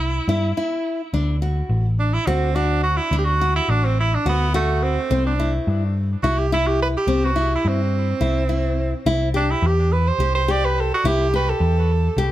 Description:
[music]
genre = progressive instrumental, band music in an uneven meter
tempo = 212 BPM (eighths)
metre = 7/8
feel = straight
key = D mixolydian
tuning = A4 = 441 Hz
[part]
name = bright tenor saxophone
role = melody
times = 0.0-12.3 s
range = A3 to D5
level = -23 LUFS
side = right 3 dB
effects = ping-pong delay
[part]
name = hollow-body short-scale picked electric bass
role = bass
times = 0.0-12.3 s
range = A1 to G2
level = -20 LUFS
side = equal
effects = none
[part]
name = nylon-string guitar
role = arpeggios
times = 0.3-12.3 s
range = C4 to G4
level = -24 LUFS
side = left 2 dB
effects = none
[sound]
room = light reverb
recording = none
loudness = -18 LUFS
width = side -14 dB against mid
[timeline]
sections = 0.0-1.1 A section; 1.1-12.3 B section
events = tenor saxophone solo 1.1-12.3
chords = 0.0 C; 1.1 D; 5.1 C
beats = 0.00 0.28 0.57 0.85 | 1.14 1.42 1.70 1.99 2.27 2.55 2.83 | 3.12 3.40 3.69 3.97 4.25 4.54 4.82 | 5.10 5.38 5.67 5.95 6.24 6.52 6.80 | 7.08 7.37 7.65 7.93 8.22 8.50 8.78 | 9.06 9.35 9.63 9.91 10.20 10.48 10.76 | 11.04 11.33 11.61 11.89 12.18

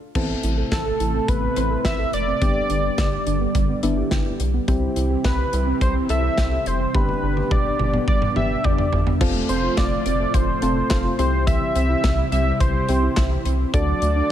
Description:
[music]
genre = synth-pop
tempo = 106 BPM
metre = 4/4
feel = straight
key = C major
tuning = A4 = 440 Hz
[part]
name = string machine, cellos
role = sustained chords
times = 0.1-14.3 s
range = C3 to A4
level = -28 LUFS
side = equal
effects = ensemble chorus
[part]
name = soft electric-piano-like synth keys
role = accompaniment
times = 0.2-14.3 s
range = B3 to C5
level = -28 LUFS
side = left 3 dB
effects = chorus
[part]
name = warbly dusty pluck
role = arpeggios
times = 0.2-14.3 s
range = D3 to G5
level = -29 LUFS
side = right 7 dB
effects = chorus, ping-pong delay
[part]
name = rubbery square bass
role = bass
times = 0.2-14.2 s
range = F1 to D2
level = -24 LUFS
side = equal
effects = none
[part]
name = modern studio drum kit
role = drums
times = 0.2-14.2 s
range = crash cymbal, handclaps, hi-hat, kick drum, snare drum, toms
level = -23 LUFS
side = equal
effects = none
[part]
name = octave-doubled lead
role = melody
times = 0.7-14.3 s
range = A4 to E5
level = -24 LUFS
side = equal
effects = chorus, ping-pong delay
[sound]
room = light reverb, small room ambience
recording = none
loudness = -18 LUFS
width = side -10 dB against mid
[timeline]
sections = 0.2-9.2 A section; 9.2-14.3 B section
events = stop 0.0; drum fill 6.9-9.2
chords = 0.2 Amadd9; 2.4 G; 4.7 C; 6.9 G; 9.2 F; 11.2 C; 13.7 D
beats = | 0.15 0.72 1.28 1.85 | 2.42 2.98 3.55 4.12 | 4.68 5.25 5.81 6.38 | 6.95 7.51 8.08 8.64 | 9.21 9.78 10.34 10.91 | 11.47 12.04 12.61 13.17 | 13.74 14.30

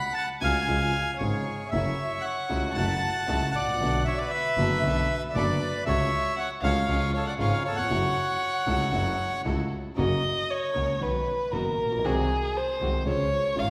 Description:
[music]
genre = tango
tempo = 117 BPM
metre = 4/4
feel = rubato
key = F# minor, F# major from 10.0 s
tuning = A4 = 440 Hz
[part]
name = bandoneon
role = melody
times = 0.0-9.4 s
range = G#4 to B5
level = -30 LUFS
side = equal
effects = none
[part]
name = warm violin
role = second line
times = 0.0-13.7 s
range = G#4 to B5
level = -33 LUFS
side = equal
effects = none
[part]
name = warm concert grand piano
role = accompaniment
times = 0.4-13.7 s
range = F#1 to G#4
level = -33 LUFS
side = equal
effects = none
[part]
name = warm double bass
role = bass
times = 0.4-13.7 s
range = F#1 to C#2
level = -33 LUFS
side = equal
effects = none
[part]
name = rich studio string section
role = stabs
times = 1.7-13.7 s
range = G#3 to A#4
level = -43 LUFS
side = equal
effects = none
[sound]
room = wet scoring stage reverb, RT60 1.5 s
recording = recorded in a church or concert hall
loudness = -27 LUFS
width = mono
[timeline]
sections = 0.0-10.0 A section; 10.0-13.7 B section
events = violin solo 10.0-13.7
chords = 0.0 F#m; 0.7 C#; 1.7 F#m7; 3.8 Bm7; 5.9 F#m/C#; 6.9 C#; 7.9 F#m7; 10.0 F#; 11.0 B; 12.0 G#7/B#; 13.1 C#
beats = 0.17 0.69 1.21 | 1.73 2.25 2.76 3.28 | 3.80 4.32 4.83 5.35 | 5.86 6.38 6.88 7.39 | 7.90 8.42 8.93 9.46 | 9.98 10.50 11.01 11.53 | 12.04 12.54 13.05 13.56

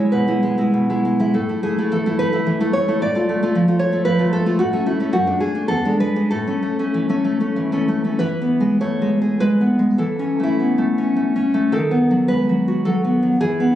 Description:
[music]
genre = romantic piece for solo classical guitar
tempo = 93-116 BPM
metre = 3/4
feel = rubato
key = A major, E major from 8.2 s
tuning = A4 = 440 Hz
[part]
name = nylon-string guitar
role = solo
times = 0.0-13.8 s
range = E2 to D5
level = -16 LUFS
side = equal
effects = none
[sound]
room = moderate recital hall reverb, RT60 1.6 s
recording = recorded on a phone in the room, club ambience, compression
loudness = -16 LUFS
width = side -12 dB against mid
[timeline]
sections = 0.0-8.2 A section; 8.2-13.8 B section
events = none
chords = 0.0 E; 1.3 A5; 3.0 Dm/A; 4.6 A; 5.1 D/F#; 5.7 E7; 6.3 A; 8.2 E; 10.0 A/E; 11.7 B7/D#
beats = 0.12 0.73 | 1.34 1.92 2.47 | 3.02 3.54 4.07 | 4.60 5.14 5.70 | 6.31 6.95 7.58 | 8.21 8.82 9.40 | 9.99 10.59 11.16 | 11.72 12.29 12.85 | 13.39

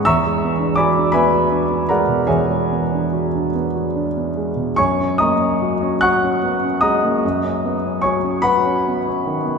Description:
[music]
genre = classical, impressionist solo piano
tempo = 47-57 BPM (dotted quarters)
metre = 6/8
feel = rubato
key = F# mixolydian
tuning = A4 = 439 Hz
[part]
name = warm concert grand piano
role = solo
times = 0.0-9.6 s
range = E2 to F#6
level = -16 LUFS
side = equal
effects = none
[sound]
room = wet cathedral reverb, RT60 5.7 s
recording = recorded in a church or concert hall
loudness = -16 LUFS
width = side -5 dB against mid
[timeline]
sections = 0.0-4.8 A section; 4.8-9.6 B section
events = none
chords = 0.0 E9; 4.8 F#69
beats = | 0.04 1.13 | 2.29 3.54 | 4.77 6.02 | 7.23 8.44

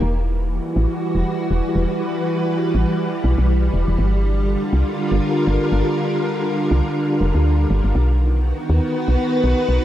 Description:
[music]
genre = IDM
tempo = 121 BPM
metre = 4/4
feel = swing 56% on 16ths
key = unclear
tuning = A4 = 445 Hz
[part]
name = soft string machine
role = sustained chords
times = 0.0-9.8 s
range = D3 to B4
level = -20 LUFS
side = equal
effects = ensemble chorus
[part]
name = woody FM bass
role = bass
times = 0.0-9.8 s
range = E1 to D#2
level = -17 LUFS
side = equal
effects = tube saturation
[sound]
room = moderate plate reverb, RT60 3.3 s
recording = dreamy mix soaked in reverb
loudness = -17 LUFS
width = side -12 dB against mid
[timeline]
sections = 0.0-9.8 A section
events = none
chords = 0.0 Emadd9; 4.0 Gm7; 8.0 B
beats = | 0.02 0.51 1.01 1.51 | 2.00 2.50 2.99 3.49 | 3.98 4.48 4.98 5.47 | 5.97 6.46 6.96 7.46 | 7.95 8.45 8.94 9.44

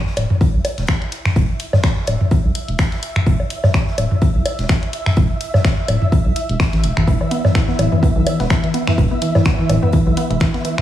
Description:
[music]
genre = minimal techno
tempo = 126 BPM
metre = 4/4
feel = swing 56% on 16ths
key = unclear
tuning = A4 = 439 Hz
[part]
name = flickering grainy texture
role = texture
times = 0.6-10.8 s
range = E5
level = -28 LUFS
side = right 1 dB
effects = built-in reverb, sidechain pumping
[part]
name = big rock drum kit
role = drums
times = 0.1-10.8 s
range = hi-hat, snare drum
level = -35 LUFS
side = left 1 dB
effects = high-pass filter on hats, high-pass filter on snare, high-pass filter on room, analog delay
[part]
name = round analog bass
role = bass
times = 0.2-10.4 s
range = D1 to B1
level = -18 LUFS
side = equal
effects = sidechain pumping
[part]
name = house drum kit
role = drums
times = 0.2-10.8 s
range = finger snaps, hi-hat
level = -26 LUFS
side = left 1 dB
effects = none
[part]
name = electronic woodblock and toms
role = percussion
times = 0.2-10.8 s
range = none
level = -19 LUFS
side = equal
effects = analog delay
[part]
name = electronic kick drum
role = drums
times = 0.4-10.5 s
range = none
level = -16 LUFS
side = equal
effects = none
[part]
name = resonant blip pluck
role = riff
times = 7.1-10.8 s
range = E3 to B3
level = -19 LUFS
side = equal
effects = chorus, sidechain pumping, dub echo
[sound]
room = light reverb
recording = echo-heavy mix, studio reverb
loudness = -14 LUFS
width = side -12 dB against mid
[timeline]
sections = 0.0-10.8 A section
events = none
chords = 0.0 E5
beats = 0.41 0.89 | 1.36 1.84 2.31 2.79 | 3.27 3.74 4.22 4.70 | 5.17 5.65 6.12 6.60 | 7.08 7.55 8.03 8.50 | 8.98 9.46 9.93 10.41

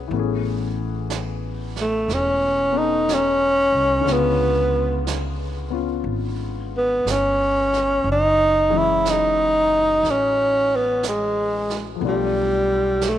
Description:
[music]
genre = jazz ballad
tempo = 60 BPM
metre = 4/4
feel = swing 66% on 8ths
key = unclear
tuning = A4 = 440 Hz
[part]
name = warm concert grand piano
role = accompaniment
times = 0.0-13.2 s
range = D3 to C#5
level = -28 LUFS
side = left 13 dB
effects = none
[part]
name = upright bass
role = bass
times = 0.0-13.2 s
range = E1 to C#2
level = -28 LUFS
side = right 1 dB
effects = none
[part]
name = vintage brush drum kit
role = drums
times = 0.1-13.2 s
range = brushed snare drum, hi-hat, snare drum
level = -33 LUFS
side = right 10 dB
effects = none
[part]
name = breathy tenor saxophone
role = melody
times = 1.8-13.2 s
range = G3 to E4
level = -18 LUFS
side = equal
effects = none
[sound]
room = light reverb, studio reverb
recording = 1960s-style stereo with parts hard left and right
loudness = -18 LUFS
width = side -11 dB against mid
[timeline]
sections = 0.0-13.2 A section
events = none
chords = 0.1 Amaj9; 4.1 C#7b9; 8.0 F#m9; 12.0 Bm7b5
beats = | 0.11 1.09 2.08 3.07 | 4.06 5.05 6.05 7.05 | 8.04 9.04 10.03 11.02 | 12.01 13.00

